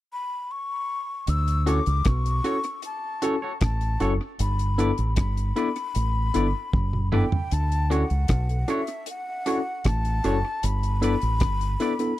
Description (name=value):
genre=lovers rock reggae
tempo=77 BPM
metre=4/4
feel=straight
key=D major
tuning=A4 = 440 Hz
part: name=breathy jazz flute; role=melody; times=0.1-12.2 s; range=E5 to E6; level=-30 LUFS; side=left 3 dB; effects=tape echo
part: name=deep dub fingered electric bass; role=bass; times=1.3-11.8 s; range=F#1 to D2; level=-24 LUFS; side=equal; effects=none
part: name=deep reggae drum kit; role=drums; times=1.3-12.2 s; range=hi-hat, kick drum, rim click, toms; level=-26 LUFS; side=equal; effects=tape echo
part: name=bright tine electric piano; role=accompaniment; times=1.7-12.1 s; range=B3 to A4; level=-27 LUFS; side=left 2 dB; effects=medium stereo tremolo
part: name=twangy electric guitar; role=stabs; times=1.7-11.9 s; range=D4 to D5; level=-33 LUFS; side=right 2 dB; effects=none
room=small room ambience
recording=dry, close 1970s-style studio recording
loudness=-22 LUFS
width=side -15 dB against mid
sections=0.0-1.3 A section; 1.3-7.5 B section; 7.5-12.2 C section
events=drum fill 6.7-7.5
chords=0.0 N.C.; 1.3 Dmaj7; 4.4 G6; 7.5 Dmaj7; 10.6 G6